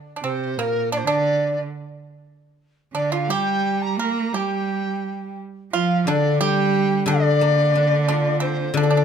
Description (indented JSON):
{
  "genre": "chinese traditional, Chinese chamber ensemble",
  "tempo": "88 BPM",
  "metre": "2/4",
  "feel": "rubato",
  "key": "D jue mode",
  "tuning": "A4 = 440 Hz",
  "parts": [
    { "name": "mellow large dizi", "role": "melody", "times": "0.2-9.0 s", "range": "Bb4 to Bb5", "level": "-23 LUFS", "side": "left 1 dB", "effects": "none" },
    { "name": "clear cello", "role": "second line", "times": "0.2-9.0 s", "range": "Bb2 to Bb3", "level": "-24 LUFS", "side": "right 5 dB", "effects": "none" },
    { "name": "pipa", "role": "second line", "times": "0.2-9.0 s", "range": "Bb3 to Bb4", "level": "-27 LUFS", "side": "right 5 dB", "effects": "none" },
    { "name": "guzheng", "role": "accompaniment", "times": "6.1-9.0 s", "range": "D3 to F4", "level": "-22 LUFS", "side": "left 6 dB", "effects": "none" }
  ],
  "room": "light reverb",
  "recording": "close, detailed microphones",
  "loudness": "-18 LUFS",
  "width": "side -7 dB against mid",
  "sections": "0.0-9.0 A section",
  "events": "none",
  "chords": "none",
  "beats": "| 0.57 1.25 | 1.93 2.61 | 3.29 3.99 | 4.69 5.39 | 6.08 6.74 | 7.41 8.08 | 8.75"
}